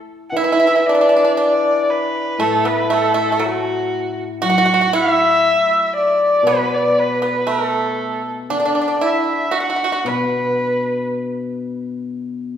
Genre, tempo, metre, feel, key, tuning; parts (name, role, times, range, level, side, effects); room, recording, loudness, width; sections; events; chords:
chinese traditional, Chinese chamber ensemble; 59 BPM; 2/4; straight; A zhi mode; A4 = 439 Hz
dark erhu; melody; 0.3-11.1 s; F#4 to F#5; -17 LUFS; equal
hammered dulcimer; accompaniment; 0.3-12.6 s; A2 to F#3; -21 LUFS; left 2 dB
pipa; second line; 0.4-11.0 s; F#3 to F#4; -21 LUFS; right 4 dB
wet recital hall reverb, RT60 1.6 s; recorded in a church or concert hall; -15 LUFS; side -9 dB against mid
0.4-12.6 A section